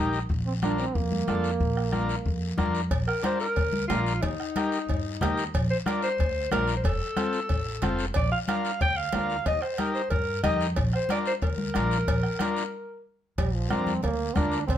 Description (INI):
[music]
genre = latin, cumbia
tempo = 183 BPM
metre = 4/4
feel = straight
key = Bb major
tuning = A4 = 440 Hz
[part]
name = warm trombone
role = second line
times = 0.0-2.6, 13.4-14.8 s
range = F3 to Eb4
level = -31 LUFS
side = right 6 dB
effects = none
[part]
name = overdriven combo organ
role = accompaniment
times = 0.0-14.6 s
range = C4 to Bb4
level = -30 LUFS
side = left 3 dB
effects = none
[part]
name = upright bass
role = bass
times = 0.0-14.8 s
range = F1 to G2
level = -30 LUFS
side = equal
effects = none
[part]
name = guiro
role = percussion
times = 0.1-14.8 s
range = none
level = -42 LUFS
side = left 7 dB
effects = none
[part]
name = bombo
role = percussion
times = 0.3-14.8 s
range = none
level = -30 LUFS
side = left 1 dB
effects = none
[part]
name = congas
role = percussion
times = 0.6-14.8 s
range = none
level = -32 LUFS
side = left 3 dB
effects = none
[part]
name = cowbell and timbales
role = percussion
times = 2.9-14.8 s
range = none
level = -36 LUFS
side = right 4 dB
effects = none
[part]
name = breathy alto saxophone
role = melody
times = 3.1-13.0 s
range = Eb4 to G5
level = -29 LUFS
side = equal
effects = none
[sound]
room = light reverb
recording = none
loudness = -24 LUFS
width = side -10 dB against mid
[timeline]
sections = 0.0-2.9 A section; 2.9-13.4 B section; 13.4-14.8 C section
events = trombone solo 0.0-2.9, 13.4-14.8; stop 12.7-13.4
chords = 0.3 Bb; 4.2 Eb; 5.5 Bb; 6.8 F; 8.2 Bb; 9.5 Eb; 10.8 Bb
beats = | 0.29 0.62 0.95 1.28 | 1.60 1.93 2.26 2.59 | 2.92 3.24 3.57 3.90 | 4.23 4.55 4.88 5.21 | 5.54 5.86 6.19 6.52 | 6.84 7.17 7.50 7.83 | 8.15 8.48 8.81 9.13 | 9.46 9.79 10.11 10.44 | 10.77 11.10 11.42 11.75 | 12.07 12.40 12.73 13.05 | 13.38 13.71 14.03 14.36 | 14.69